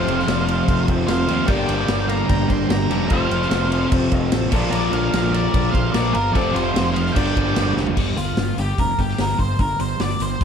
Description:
classic rock; 148 BPM; 4/4; straight; G minor; A4 = 440 Hz
octave-fuzz lead guitar; melody; 0.0-10.4 s; F4 to C6; -26 LUFS; equal; distortion
octave-fuzz lead guitar; second line; 0.0-7.7 s; F4 to G5; -30 LUFS; right 1 dB; distortion, digital delay
clear upright piano; accompaniment; 0.0-7.9 s; F4 to F5; -30 LUFS; left 4 dB
crunchy overdriven guitar; riff; 0.0-10.4 s; F2 to G4; -23 LUFS; left 1 dB
distorted electric guitar; riff; 0.0-8.0 s; F2 to Bb3; -25 LUFS; right 1 dB; distortion
fuzz fingered electric bass; bass; 0.0-10.4 s; F1 to Eb2; -24 LUFS; equal; overdrive
vintage drum kit; drums; 0.1-10.4 s; crash cymbal, hi-hat, kick drum, snare drum, toms; -23 LUFS; equal
light reverb; -17 LUFS; side -7 dB against mid
0.0-8.0 A section; 8.0-10.4 B section
drum fill 7.8; lead electric guitar solo 8.0-10.4
0.0 F; 1.5 Gm; 3.1 F; 4.5 Bb; 6.4 F; 7.2 Gm7; 8.0 G5

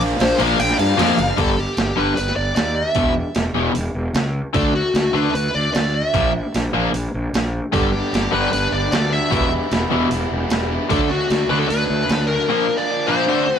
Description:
hard rock; 151 BPM; 4/4; straight; A4 = 440 Hz
overdriven electric guitar; riff; 0.0-1.4, 7.7-13.6 s; G2 to F#4; -24 LUFS; equal
fuzz fingered electric bass; bass; 0.0-12.3 s; E1 to G2; -23 LUFS; equal; overdrive
boom bap sampler-style drum kit; drums; 0.0-12.2 s; crash cymbal, hi-hat, kick drum, snare drum; -22 LUFS; right 1 dB
bluesy overdriven lead guitar; melody; 0.2-13.6 s; F#4 to G5; -21 LUFS; left 1 dB; distortion, digital delay
cranked stack guitar; riff; 0.4-13.4 s; E2 to D4; -21 LUFS; left 6 dB; overdrive
sludgy distorted guitar; riff; 0.4-13.4 s; E2 to D4; -24 LUFS; right 5 dB; overdrive
moderate booth ambience, RT60 0.2 s; rough rehearsal-room recording; -16 LUFS; side -8 dB against mid
0.0-1.4 A section; 1.4-13.6 B section
lead electric guitar solo 0.0-1.4
0.0 Bb; 1.4 G5; 3.0 E5; 4.5 D; 6.1 Bb5; 7.7 G; 9.3 Em; 10.9 D; 12.5 Bb

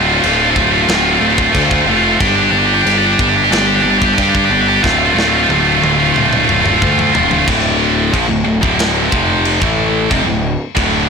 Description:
heavy metal; 91 BPM; 4/4; straight; D minor; A4 = 440 Hz
heavy high-gain guitar; riff; 0.0-11.1 s; D2 to G4; -12 LUFS; right 1 dB; distortion
fuzz picked electric bass; bass; 0.0-11.1 s; D1 to G2; -18 LUFS; left 1 dB; overdrive
tight metal drum kit; drums; 0.2-10.9 s; china cymbal, crash cymbal, kick drum, snare drum, toms; -19 LUFS; left 1 dB; soft clipping on kick
light reverb; blown-out, overdriven recording, overdrive; -10 LUFS; side -5 dB against mid
0.0-7.5 A section; 7.5-11.1 B section
drum fill 4.8-7.5
0.0 Dm; 2.2 G5; 4.8 Dm

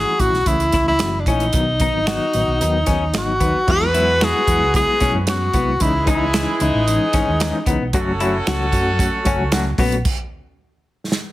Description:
uptempo 1960s-style soul; 113 BPM; 4/4; straight; E major; A4 = 442 Hz
warm tenor saxophone; melody; 0.0-7.7 s; D4 to B4; -19 LUFS; left 1 dB; plate reverb
overdriven reed electric piano; accompaniment; 0.0-10.0 s; D#3 to F#4; -24 LUFS; left 2 dB; fast tremolo
electric guitar through a small old amp; riff; 0.0-10.0 s; B3 to F#4; -25 LUFS; left 4 dB
hollow-body short-scale fingered electric bass; bass; 0.0-10.0 s; F#1 to F#2; -23 LUFS; right 1 dB
natural country drum kit; drums; 0.2-11.2 s; crash cymbal, hi-hat, kick drum, snare drum; -22 LUFS; right 1 dB
finger snaps; percussion; 1.0-9.6 s; -29 LUFS; right 3 dB
clear horn section; second line; 3.7-9.8 s; E3 to A4; -25 LUFS; right 2 dB; plate reverb
light reverb; heavily compressed radio sound, multiband compression; -16 LUFS; side -16 dB against mid
0.0-3.7 A section; 3.7-11.3 B section
stop 10.0-11.3; drum fill 11.1
0.0 A; 1.5 B; 3.7 Eadd9; 5.8 C#madd9; 7.9 F#m; 10.0 N.C.

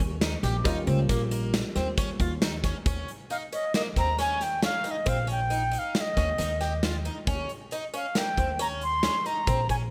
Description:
progressive instrumental, band music in an uneven meter; 136 BPM; 5/4; straight; Eb mixolydian; A4 = 442 Hz
vintage hollow-body jazz guitar; accompaniment; 0.0-2.8 s; G3 to F4; -37 LUFS; equal
upright bass; bass; 0.0-9.9 s; Bb1 to Eb2; -32 LUFS; equal
big rock drum kit; drums; 0.0-9.8 s; hi-hat, kick drum, snare drum; -32 LUFS; equal
picked twelve-string acoustic guitar; arpeggios; 0.2-9.8 s; Bb3 to G4; -36 LUFS; equal; tape echo
bright reedy wooden flute; melody; 3.3-9.8 s; Eb5 to C6; -31 LUFS; equal; tape echo
light reverb; -27 LUFS; mono
0.0-2.9 A section; 2.9-9.9 B section
0.0 Eb7; 2.9 Eb7(no3)

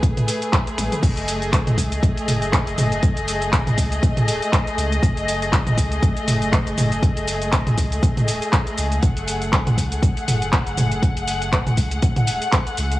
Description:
afro house; 120 BPM; 4/4; swing 56% on 16ths; F# dorian; A4 = 440 Hz
muted studio string section; sustained chords; 0.0-13.0 s; A3 to F#5; -24 LUFS; left 1 dB; sidechain pumping
electronic kick drum; drums; 0.0-12.6 s; -19 LUFS; equal
house drum kit; drums; 0.0-13.0 s; crash cymbal, finger snaps, handclaps, hi-hat, shaker, toms; -22 LUFS; equal
warm sub bass; bass; 0.8-13.0 s; D#1 to C#2; -27 LUFS; equal; sidechain pumping
digital ambience; dry, gritty hardware recording, transformer saturation, cassette tape, small room ambience; -18 LUFS; side -16 dB against mid
0.0-13.0 A section
drum fill 0.8
0.0 F#m69

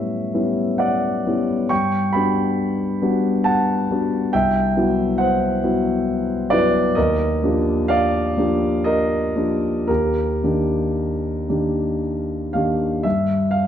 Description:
classical, impressionist solo piano; 55-70 BPM; 3/4; rubato; A4 = 440 Hz
warm grand piano; solo; 0.0-13.7 s; C2 to C#6; -18 LUFS; equal
moderate scoring stage reverb, RT60 1.7 s; dark, warm production; -18 LUFS; side -9 dB against mid
0.0-13.0 A section
0.0 A9; 1.7 Gmaj7; 4.3 Cmaj7#11; 7.0 Ebmaj9; 13.0 G5

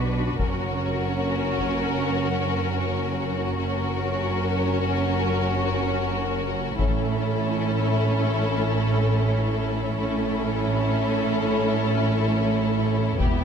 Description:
cinematic, epic orchestral film score; 75 BPM; 4/4; straight; A4 = 440 Hz
warm studio violin section; melody; 0.0-13.4 s; G4 to B4; -30 LUFS; left 7 dB
warm symphonic violin section; second line; 0.0-13.4 s; E4 to F#4; -29 LUFS; left 4 dB
warm symphonic viola section; accompaniment; 0.0-13.4 s; B3 to D4; -28 LUFS; right 2 dB
rich symphonic cello section; bass; 0.0-13.4 s; E2 to B2; -28 LUFS; right 2 dB
rich symphonic double bass section; bass; 0.0-13.4 s; E1 to B1; -28 LUFS; right 3 dB
taiko ensemble; drums; 0.4-2.0, 6.8-8.4, 13.2-13.4 s; -27 LUFS; left 2 dB
moderate concert hall reverb, RT60 2.2 s; -22 LUFS; side -7 dB against mid
0.0-13.4 A section
build-up 0.0-13.4
0.4 F#; 6.8 A

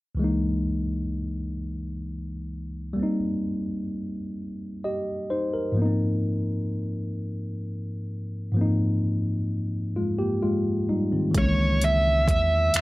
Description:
slow six-eight R&B; 43 BPM (dotted quarters); 6/8; straight; A4 = 438 Hz
tine electric piano; accompaniment; 0.1-12.8 s; Db2 to Eb5; -25 LUFS; equal
smooth gliding synth bass; bass; 11.3-12.8 s; Db2 to Fb2; -24 LUFS; equal
smooth R&B drum kit; drums; 11.3-12.8 s; finger snaps, hi-hat, kick drum; -24 LUFS; equal; overdrive
bluesy overdriven lead guitar; melody; 11.4-12.8 s; Db5 to Fb5; -22 LUFS; right 2 dB; distortion
moderate studio ambience, RT60 0.4 s; -24 LUFS; side -19 dB against mid
0.2-11.3 A section; 11.3-12.8 B section
0.2 Dbm6; 3.0 Cm7; 5.8 Ab69; 11.3 Dbm6

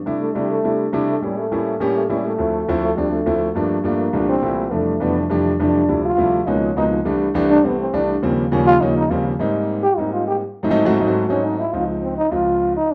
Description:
jazz; 205 BPM; 4/4; straight; C major, Ab major from 9.4 s; A4 = 444 Hz
warm concert grand piano; accompaniment; 0.1-12.7 s; C2 to G4; -21 LUFS; equal
growling trombone; melody; 0.2-12.9 s; G3 to G4; -22 LUFS; equal
wet small room reverb, RT60 0.5 s; rough home demo mix; -19 LUFS; mono
0.1-9.4 A section; 9.4-12.9 A section
trombone solo 0.1-12.9
0.1 C69; 1.2 A7b9; 2.4 Dm9; 3.6 Gm9; 4.1 C13; 4.7 Fmaj13; 5.9 Dm11; 6.5 Db13; 7.1 C69; 8.2 Eb13; 9.4 Abmaj9; 10.6 Ab7b9; 11.7 Dbmaj7

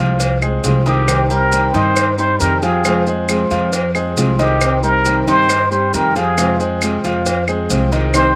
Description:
latin, Cuban son and guajira; 136 BPM; 4/4; straight; A4 = 443 Hz
fingerpicked steel-string acoustic guitar; accompaniment; 0.0-8.4 s; C3 to G4; -23 LUFS; equal
bright concert grand piano; arpeggios; 0.0-8.3 s; Eb3 to F5; -23 LUFS; equal; slapback echo
upright bass; bass; 0.0-8.4 s; C2 to G2; -22 LUFS; equal
cowbell; percussion; 0.2-8.4 s; -26 LUFS; equal; slapback echo
maracas; percussion; 0.2-8.4 s; -28 LUFS; equal
claves; percussion; 0.4-8.4 s; -25 LUFS; equal
trumpet with plunger mute; melody; 0.9-8.4 s; G4 to C5; -18 LUFS; equal
nylon-string guitar; second line; 0.9-8.3 s; C4 to Eb4; -29 LUFS; equal; slapback echo
little or no reverb; recorded outdoors, with no room sound; -16 LUFS; mono
0.0-8.4 A section
0.0 Fm; 1.1 Cm; 2.8 Fm; 4.6 Cm; 6.4 Fm

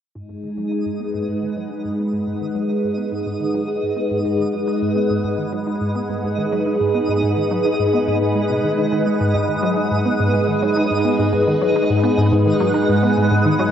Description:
ambient, sequencer-driven space music; 106 BPM; 4/4; straight; G# minor; A4 = 440 Hz
phased string machine; sustained chords; 0.1-13.7 s; G#3 to F#5; -19 LUFS; equal; ensemble chorus, phaser
resonant blip pluck; riff; 0.1-13.7 s; G#2 to D#4; -22 LUFS; equal; wide subtle chorus, tape echo
twinkling granular texture; texture; 0.7-13.7 s; D#5; -28 LUFS; right 2 dB; built-in reverb
wet plate reverb, RT60 3.1 s; worn, warbling old tape, cassette tape, warbly pitch drift, nothing above 7.7 kHz; -17 LUFS; side -9 dB against mid
0.1-13.7 A section
fade-in on synth arpeggio sound 0.1-13.7; fade-in on synth texture 0.1-13.7; filter sweep on string machine 0.1-13.7
0.1 G#m7

